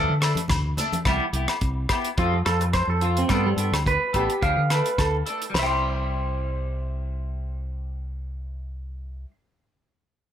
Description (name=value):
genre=highlife guitar band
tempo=107 BPM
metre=4/4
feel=swing 54% on 16ths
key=C major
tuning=A4 = 441 Hz
part: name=clean electric guitar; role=accompaniment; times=0.0-9.3 s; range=F3 to A4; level=-28 LUFS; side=left 1 dB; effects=wide subtle chorus
part: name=fingered electric bass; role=bass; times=0.0-9.2 s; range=A1 to D3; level=-26 LUFS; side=equal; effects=none
part: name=damped 70s drum kit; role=drums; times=0.2-5.7 s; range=crash cymbal, hi-hat, kick drum, rim click, snare drum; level=-28 LUFS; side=equal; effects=none
part: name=agogo bells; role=percussion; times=0.2-5.7 s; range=none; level=-32 LUFS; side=left 3 dB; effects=none
part: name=shekere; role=percussion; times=0.2-0.9 s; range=none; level=-33 LUFS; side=equal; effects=none
part: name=congas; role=percussion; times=0.4-1.0 s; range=none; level=-31 LUFS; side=left 2 dB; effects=none
part: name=clean electric guitar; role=arpeggios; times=2.2-9.3 s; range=G3 to C6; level=-26 LUFS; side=right 2 dB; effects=tape echo
room=light reverb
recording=none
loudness=-22 LUFS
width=side -10 dB against mid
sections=0.0-5.5 A section; 5.5-7.8 B section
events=clean electric guitar solo 0.0-5.5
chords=0.0 D5; 1.1 Cmaj7; 2.2 F; 3.3 Gadd9; 4.4 Dm; 5.5 C